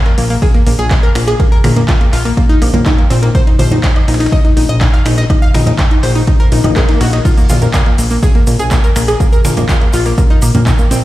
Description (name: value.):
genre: progressive house.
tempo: 123 BPM.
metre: 4/4.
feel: straight.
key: unclear.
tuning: A4 = 441 Hz.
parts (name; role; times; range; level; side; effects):
analog pluck; arpeggios; 0.1-11.0 s; Bb3 to F5; -17 LUFS; left 1 dB; chorus, sidechain pumping, tape echo.
deep house drum kit; drums; 0.1-11.0 s; crash cymbal, finger snaps, handclaps, hi-hat; -22 LUFS; equal; overdrive.
dusty soul sampler-style drum kit; drums; 0.1-11.0 s; hi-hat, ride cymbal, snare drum; -30 LUFS; right 1 dB; none.
fat analog bass; bass; 0.2-11.0 s; Bb1; -13 LUFS; left 1 dB; sidechain pumping.
electronic kick drum; drums; 0.4-10.8 s; none; -11 LUFS; equal; none.
woodblock and congas; percussion; 0.4-11.0 s; none; -20 LUFS; right 2 dB; sidechain pumping on perc.
swell; sound effects; 6.4-7.3 s; none; -23 LUFS; equal; none.
egg shaker; percussion; 7.3-11.0 s; none; -27 LUFS; right 2 dB; none.
room: little or no reverb.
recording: played on a big sound system in a bare room, stone room reverb.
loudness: -9 LUFS.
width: side -16 dB against mid.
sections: 0.0-11.0 A section.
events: swell 6.4-7.3.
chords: 0.0 Bbsus4.